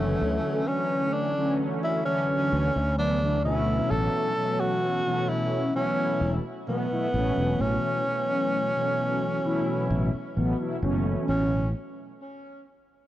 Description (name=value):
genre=vaporwave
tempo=65 BPM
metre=4/4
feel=straight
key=A major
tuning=A4 = 439 Hz
part: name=breathy tenor saxophone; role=melody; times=0.0-11.7 s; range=A3 to A4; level=-28 LUFS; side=equal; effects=tape echo
part: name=mellow synth brass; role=accompaniment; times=0.0-11.7 s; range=B2 to E4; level=-27 LUFS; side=equal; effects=lush chorus, cassette tape
part: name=sustaining fretless electric bass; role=bass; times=0.0-11.7 s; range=E1 to D2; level=-27 LUFS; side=equal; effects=none
room=light reverb, studio ambience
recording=worn, warbling old tape, cassette tape, warbly pitch drift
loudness=-24 LUFS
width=side -13 dB against mid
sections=0.0-11.3 A section; 11.3-13.1 B section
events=none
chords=0.2 Dmaj9; 3.9 A69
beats=| 0.22 1.14 2.06 2.99 | 3.91 4.83 5.76 6.68 | 7.60 8.53 9.45 10.37 | 11.29